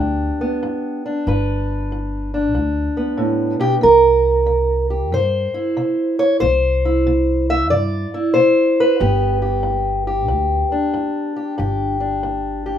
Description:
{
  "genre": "acoustic country blues, solo or duo",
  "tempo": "93 BPM",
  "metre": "4/4",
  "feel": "swing 65% on 8ths",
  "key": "G major",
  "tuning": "A4 = 440 Hz",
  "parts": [
    { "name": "fingerpicked steel-string acoustic guitar", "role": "melody", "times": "0.0-12.8 s", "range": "G2 to E5", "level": "-16 LUFS", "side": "equal", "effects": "none" },
    { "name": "upright bass", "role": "bass", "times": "0.0-12.8 s", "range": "G1 to G2", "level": "-22 LUFS", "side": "equal", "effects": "none" }
  ],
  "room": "wet studio ambience, RT60 0.5 s",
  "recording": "rough home demo mix",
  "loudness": "-16 LUFS",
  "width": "side -9 dB against mid",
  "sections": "0.0-12.8 A section",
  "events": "none",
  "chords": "0.0 G; 3.8 C; 9.0 G"
}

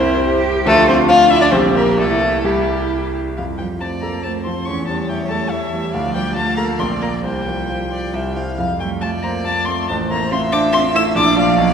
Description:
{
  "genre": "quick classical-period movement for piano quartet",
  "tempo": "127-144 BPM",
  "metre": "3/4",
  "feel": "rubato",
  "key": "F major",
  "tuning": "A4 = 443 Hz",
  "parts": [
    { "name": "dark violin", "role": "melody", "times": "0.0-11.7 s", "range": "G4 to E6", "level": "-19 LUFS", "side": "left 3 dB", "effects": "none" },
    { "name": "warm cello", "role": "second line", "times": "0.0-11.7 s", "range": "E3 to G4", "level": "-22 LUFS", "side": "right 4 dB", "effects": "none" },
    { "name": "warm violin", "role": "second line", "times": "0.0-11.7 s", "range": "G3 to F5", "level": "-22 LUFS", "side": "equal", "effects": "none" },
    { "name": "clear concert grand piano", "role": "accompaniment", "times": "0.0-11.7 s", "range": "A1 to D5", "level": "-20 LUFS", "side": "right 1 dB", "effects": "none" }
  ],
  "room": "wet concert hall reverb, RT60 2.2 s",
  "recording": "recorded in a church or concert hall",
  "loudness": "-15 LUFS",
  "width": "side -7 dB against mid",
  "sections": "0.0-3.4 A section; 3.4-11.7 B section",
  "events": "none",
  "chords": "0.0 C7; 0.7 Dm; 1.5 Gm/Bb; 2.0 C; 3.4 F; 4.7 A7/E; 5.9 Dm; 6.8 Bb; 7.2 Csus4; 8.1 C; 8.6 F; 9.9 F/A; 11.2 Bb"
}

